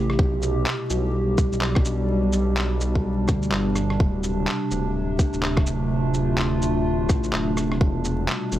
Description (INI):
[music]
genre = future garage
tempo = 126 BPM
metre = 4/4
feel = swing 60% on 16ths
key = unclear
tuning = A4 = 440 Hz
[part]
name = warbly tape-like pad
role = sustained chords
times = 0.0-8.6 s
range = B2 to G4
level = -24 LUFS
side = equal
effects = chorus, built-in reverb, sidechain pumping
[part]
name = dark detuned saw bass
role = bass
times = 0.0-8.6 s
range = D1 to D2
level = -26 LUFS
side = equal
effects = sidechain pumping
[part]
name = electronic rim click, shaker and handclaps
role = drums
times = 0.1-8.6 s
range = none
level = -29 LUFS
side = equal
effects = vintage 12-bit sampler grit
[part]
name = electronic kick drum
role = drums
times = 0.2-7.9 s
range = none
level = -20 LUFS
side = equal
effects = vintage 12-bit sampler grit
[sound]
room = little or no reverb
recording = dry, gritty hardware recording, vinyl crackle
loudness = -20 LUFS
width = side -13 dB against mid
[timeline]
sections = 0.0-8.6 A section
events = none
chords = 0.2 G/B; 4.0 Dm7; 7.8 Em7